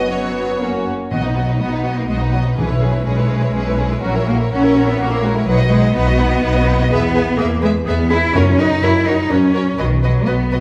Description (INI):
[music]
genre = quick classical-period movement for symphony orchestra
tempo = 124 BPM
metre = 3/4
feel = straight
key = B major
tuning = A4 = 442 Hz
[part]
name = warm studio violin section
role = melody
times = 0.0-10.6 s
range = A#4 to F#5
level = -30 LUFS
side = equal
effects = none
[part]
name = warm studio violin section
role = second line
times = 0.0-10.6 s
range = B3 to D#5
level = -25 LUFS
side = equal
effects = none
[part]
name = rich studio viola section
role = accompaniment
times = 0.0-10.6 s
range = F#3 to G#4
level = -28 LUFS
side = equal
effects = none
[part]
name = dark French horn section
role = sustained chords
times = 0.0-0.9 s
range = A#3 to C#4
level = -26 LUFS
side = equal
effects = none
[part]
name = warm studio cello section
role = bass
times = 0.0-10.6 s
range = F#2 to E4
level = -21 LUFS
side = equal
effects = none
[part]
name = warm studio double bass section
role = bass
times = 0.0-10.6 s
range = F#1 to F#2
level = -21 LUFS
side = equal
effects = none
[part]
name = timpani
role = percussion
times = 1.1-3.3, 8.3-9.0 s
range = F#2 to B2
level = -26 LUFS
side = equal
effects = none
[sound]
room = wet recital hall reverb, RT60 1.3 s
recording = heard from further back in the room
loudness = -16 LUFS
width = mono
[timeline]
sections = 0.0-1.1 A section; 1.1-10.6 B section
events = none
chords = 0.0 F#sus4; 0.6 F#; 1.1 B; 2.6 C#m7/B; 4.0 F#7/A#; 5.5 B; 6.9 E; 8.4 F#; 9.8 B